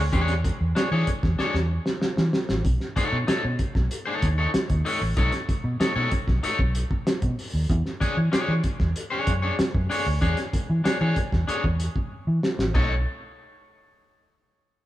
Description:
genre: funk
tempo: 95 BPM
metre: 4/4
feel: straight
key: unclear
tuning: A4 = 440 Hz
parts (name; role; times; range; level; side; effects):
- vintage muted fingered electric bass; bass; 0.0-13.0 s; A1 to E3; -25 LUFS; equal; none
- electric guitar at the edge of break-up; accompaniment; 0.1-12.9 s; D4 to C#5; -28 LUFS; left 2 dB; tube saturation, spring reverb
- cloth-damped thuddy drum kit; drums; 0.1-12.9 s; china cymbal, hi-hat, kick drum, snare drum, toms; -26 LUFS; equal; none
room: light reverb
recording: band playing live in one room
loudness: -22 LUFS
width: side -14 dB against mid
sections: 0.0-12.7 A section; 12.7-14.9 B section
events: drum fill 1.4-2.6, 12.1-12.7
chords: 0.0 E6; 2.6 B9; 7.7 E13; 12.7 B9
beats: | 0.13 0.76 1.39 2.02 | 2.65 3.28 3.91 4.54 | 5.17 5.80 6.43 7.07 | 7.70 8.33 8.96 9.59 | 10.22 10.85 11.48 12.11 | 12.74

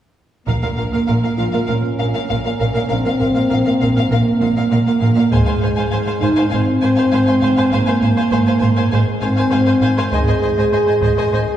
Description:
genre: cinematic, epic orchestral film score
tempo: 100 BPM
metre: 4/4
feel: straight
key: unclear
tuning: A4 = 440 Hz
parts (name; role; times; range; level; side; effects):
- rich symphonic violin section; melody; 0.5-11.4 s; F5 to Ab5; -28 LUFS; left 3 dB; none
- warm symphonic violin section; second line; 0.5-11.4 s; Eb5 to F5; -28 LUFS; left 4 dB; none
- rich chamber viola section; accompaniment; 0.5-11.4 s; Bb4 to C5; -24 LUFS; right 2 dB; none
- mellow French horn section; sustained chords; 0.5-11.6 s; Ab3 to Ab4; -17 LUFS; equal; none
- rich symphonic cello section; bass; 0.5-11.4 s; Ab2 to Bb2; -22 LUFS; right 2 dB; none
- rich symphonic double bass section; bass; 0.5-11.4 s; Ab1 to Bb1; -21 LUFS; right 1 dB; none
- taiko ensemble; drums; 0.5-1.7, 5.3-11.3 s; none; -23 LUFS; equal; none
room: wet concert hall reverb, RT60 2.2 s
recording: heard from further back in the room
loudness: -14 LUFS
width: side -11 dB against mid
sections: 0.5-11.6 A section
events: none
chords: 0.5 Bbm; 5.3 Fm/Ab; 10.1 Ab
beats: | 0.48 1.08 1.69 2.30 | 2.90 3.51 4.12 4.72 | 5.32 5.92 6.52 7.12 | 7.72 8.31 8.91 9.51 | 10.12 10.72 11.32

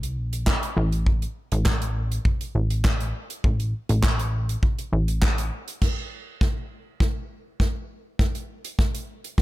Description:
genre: dance-pop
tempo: 101 BPM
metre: 4/4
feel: straight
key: unclear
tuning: A4 = 440 Hz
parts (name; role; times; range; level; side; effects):
- plucky analog bass; bass; 0.0-5.5 s; A1 to C2; -24 LUFS; equal; sidechain pumping
- natural country drum kit; drums; 0.0-9.4 s; crash cymbal, handclaps, hi-hat, kick drum, snare drum; -23 LUFS; equal; none
room: little or no reverb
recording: none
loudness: -22 LUFS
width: side -18 dB against mid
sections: 0.0-5.8 A section; 5.8-9.4 B section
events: build-up 5.8-9.4; drum fill 5.8-9.4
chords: none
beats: 0.47 | 1.06 1.66 2.25 2.85 | 3.44 4.04 4.63 5.22 | 5.82 6.41 7.00 7.60 | 8.19 8.79 9.38

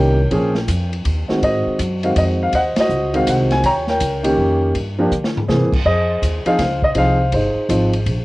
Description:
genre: jazz piano trio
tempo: 163 BPM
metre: 3/4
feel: swing 64% on 8ths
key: unclear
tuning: A4 = 442 Hz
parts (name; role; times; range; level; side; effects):
- dark grand piano; melody; 0.0-8.2 s; Eb3 to Bb5; -17 LUFS; equal; none
- upright bass; bass; 0.0-8.2 s; G1 to D3; -20 LUFS; equal; none
- open jazz drum kit; drums; 0.3-8.2 s; crash cymbal, hi-hat, kick drum, ride cymbal, snare drum, toms; -25 LUFS; equal; cassette tape
room: light reverb, studio reverb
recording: home recording on cassette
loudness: -15 LUFS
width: side -20 dB against mid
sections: 0.0-8.2 A section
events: band accent 2.7; drum fill 5.1-5.5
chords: 0.3 Bbm7; 1.1 Ab7/Eb; 1.4 Ab7; 3.6 Eb7; 4.7 G5; 5.5 Caug7; 5.9 Fm7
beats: | 0.32 0.69 1.05 | 1.42 1.79 2.16 | 2.53 2.90 3.27 | 3.64 4.01 4.38 | 4.75 5.12 5.48 | 5.85 6.22 6.59 | 6.96 7.33 7.69 | 8.06

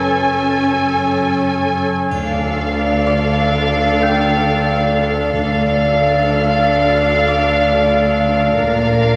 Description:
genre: cinematic, suspense film score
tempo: 93 BPM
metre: 5/4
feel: straight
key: D minor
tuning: A4 = 435 Hz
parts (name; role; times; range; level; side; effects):
- rich studio violin section; melody; 0.0-9.2 s; F5 to G#5; -23 LUFS; equal; none
- rich studio viola section; accompaniment; 0.0-9.2 s; C#4 to Bb4; -23 LUFS; equal; none
- glass harmonica; sustained chords; 0.0-9.2 s; A4 to G#5; -20 LUFS; equal; none
- warm studio cello section; bass; 0.0-9.2 s; D2 to Bb2; -24 LUFS; equal; none
- punchy sub bass; drone; 0.0-9.2 s; F#1 to D2; -29 LUFS; equal; none
- music box; texture; 0.0-9.2 s; B4 to G6; -28 LUFS; equal; none
- rich studio double bass section; bass; 2.1-9.2 s; Bb1 to D2; -26 LUFS; equal; none
- triangle; percussion; 2.1-3.4 s; none; -50 LUFS; equal; none
room: wet concert hall reverb, RT60 1.9 s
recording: nothing above 10.7 kHz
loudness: -16 LUFS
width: mono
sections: 0.0-2.1 A section; 2.1-9.2 B section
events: none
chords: 0.0 F#madd9; 2.1 Dm; 8.6 Bb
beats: 0.18 0.83 1.47 | 2.12 2.76 3.41 4.05 4.70 | 5.34 5.99 6.63 7.28 7.92 | 8.57

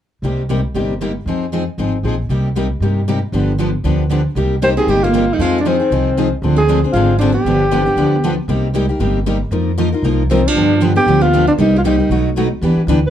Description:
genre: acoustic string swing (jazz manouche)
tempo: 232 BPM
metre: 4/4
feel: swing 56% on 8ths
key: C minor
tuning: A4 = 442 Hz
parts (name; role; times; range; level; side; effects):
- picked steel-string acoustic guitar; accompaniment; 0.2-13.0 s; B2 to Bb4; -20 LUFS; left 4 dB; none
- picked steel-string acoustic guitar; accompaniment; 0.2-13.0 s; B2 to B4; -21 LUFS; right 3 dB; none
- upright bass; bass; 0.2-13.1 s; G1 to G2; -18 LUFS; equal; none
- breathy alto saxophone; melody; 4.6-13.1 s; C4 to C5; -16 LUFS; equal; plate reverb
- picked steel-string acoustic guitar; second line; 4.6-12.1 s; Eb3 to Eb4; -22 LUFS; right 1 dB; none
room: moderate small room ambience, RT60 0.5 s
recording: worn, warbling old tape, cassette tape, warbly pitch drift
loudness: -13 LUFS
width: side -10 dB against mid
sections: 0.2-4.4 A section; 4.4-12.6 B section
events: none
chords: 0.2 Cm7; 1.3 Fm7; 2.3 Cm7; 3.3 G7; 4.4 Cm7; 5.4 Fm7; 6.4 Dm7b5; 7.5 G7; 8.5 Cm7; 9.5 F7sus4; 10.6 G7; 11.6 Cm7; 12.1 B7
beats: | 0.23 0.49 0.74 1.00 | 1.26 1.52 1.78 2.04 | 2.29 2.55 2.81 3.07 | 3.33 3.59 3.84 4.10 | 4.36 4.62 4.88 5.13 | 5.39 5.65 5.91 6.17 | 6.42 6.68 6.94 7.20 | 7.46 7.71 7.97 8.23 | 8.49 8.75 9.00 9.26 | 9.52 9.78 10.04 10.30 | 10.55 10.81 11.07 11.33 | 11.59 11.85 12.11 12.36 | 12.62 12.88

